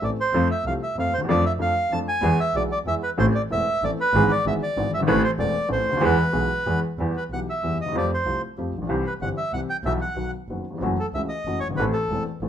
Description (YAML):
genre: tango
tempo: 189 BPM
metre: 3/4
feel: rubato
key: E harmonic minor from 7.0 s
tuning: A4 = 440 Hz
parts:
  - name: bandoneon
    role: melody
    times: 0.0-12.2 s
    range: A4 to A5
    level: -24 LUFS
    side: right 1 dB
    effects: none
  - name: warm upright piano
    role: accompaniment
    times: 0.0-12.5 s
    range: E1 to A4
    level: -25 LUFS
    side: left 1 dB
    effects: none
  - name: clear double bass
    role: bass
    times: 0.0-12.5 s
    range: E1 to F2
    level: -27 LUFS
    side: right 1 dB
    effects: none
room: moderate studio reverb, RT60 0.9 s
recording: minimal, uncompressed stereo recording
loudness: -21 LUFS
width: side -9 dB against mid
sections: 0.0-7.0 A section; 7.0-12.5 B section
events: none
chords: 0.3 F; 1.3 Dm/F; 2.2 E; 3.2 Am; 4.1 E/G#; 5.1 Am; 6.0 E; 7.0 Em; 7.9 Fadd9; 8.9 C; 9.9 Em/B; 10.2 B; 10.8 F#m7; 11.8 Am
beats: 0.02 | 0.33 0.65 0.96 | 1.28 1.59 1.91 | 2.22 2.54 2.86 | 3.19 3.51 3.83 | 4.14 4.46 4.77 | 5.08 5.40 5.71 | 6.03 6.35 6.67 | 6.99 7.31 7.63 | 7.95 8.26 8.58 | 8.90 9.21 9.53 | 9.85 10.17 10.49 | 10.82 11.14 11.46 | 11.78 12.10 12.42